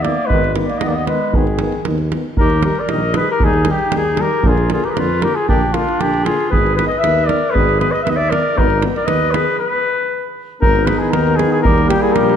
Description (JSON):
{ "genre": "balkan folk, Balkan brass band", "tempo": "116 BPM", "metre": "2/4", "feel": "straight", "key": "Ab hungarian minor", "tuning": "A4 = 441 Hz", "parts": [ { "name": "mellow flugelhorn", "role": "melody", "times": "0.0-12.4 s", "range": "F4 to Fb5", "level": "-18 LUFS", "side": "left 3 dB", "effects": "none" }, { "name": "mellow clarinet", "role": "second line", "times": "0.0-12.4 s", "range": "Eb3 to D5", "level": "-22 LUFS", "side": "right 2 dB", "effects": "none" }, { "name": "mellow tuba", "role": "bass", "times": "0.0-12.4 s", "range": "Ab1 to F2", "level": "-21 LUFS", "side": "equal", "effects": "none" }, { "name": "davul", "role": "percussion", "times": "0.0-12.4 s", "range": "none", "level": "-20 LUFS", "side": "right 2 dB", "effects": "none" }, { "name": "warm euphonium", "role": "accompaniment", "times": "0.1-12.4 s", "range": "G3 to Cb4", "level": "-25 LUFS", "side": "left 7 dB", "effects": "none" }, { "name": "warm trombone", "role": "accompaniment", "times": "0.1-12.4 s", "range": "D3 to G3", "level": "-24 LUFS", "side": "right 6 dB", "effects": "none" } ], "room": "moderate scoring stage reverb, RT60 2.1 s", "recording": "none", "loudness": "-13 LUFS", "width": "side -8 dB against mid", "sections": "0.0-2.4 A section; 2.4-10.6 A section; 10.6-12.4 B section", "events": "stop 9.6-10.6", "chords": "0.0 Abm; 2.4 Eb; 4.4 Bb; 6.5 Abm; 11.7 Eb" }